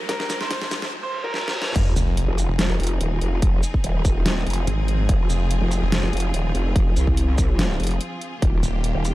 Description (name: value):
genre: heavy wobble dubstep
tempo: 144 BPM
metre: 4/4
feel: half-time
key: F minor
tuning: A4 = 440 Hz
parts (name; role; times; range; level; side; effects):
- bright studio string section; sustained chords; 0.0-9.1 s; Eb2 to Ab4; -32 LUFS; equal; sidechain pumping
- riser, reverse cymbal and sub drop; sound effects; 0.0-3.4 s; none; -30 LUFS; equal; none
- bright grand piano; melody; 0.1-1.7 s; Bb4 to C5; -29 LUFS; right 1 dB; digital delay
- dubstep drum kit; drums; 0.1-9.1 s; crash cymbal, hi-hat, shaker, snare drum; -27 LUFS; equal; overdrive
- electronic kick drum; drums; 0.1-8.5 s; none; -20 LUFS; equal; overdrive
- growl bass; bass; 1.8-9.1 s; Eb1 to C2; -22 LUFS; equal; chorus, overdrive
- snarling distorted saw bass; bass; 2.0-6.0, 8.6-8.9 s; Eb1 to Ab1; -21 LUFS; equal; distortion, overdrive
room: digital ambience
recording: dark, warm production, high-pass filter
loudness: -19 LUFS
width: side -17 dB against mid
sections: 0.0-1.8 A section; 1.8-9.1 B section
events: build-up 0.0-1.8; drum fill 0.0-0.9, 1.3-1.8; riser 0.0-0.9; reverse cymbal 0.9-1.8; drop 1.8-9.1; impact 1.8-3.4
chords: 0.0 Ebadd9; 1.8 Fm7; 8.4 Ebadd9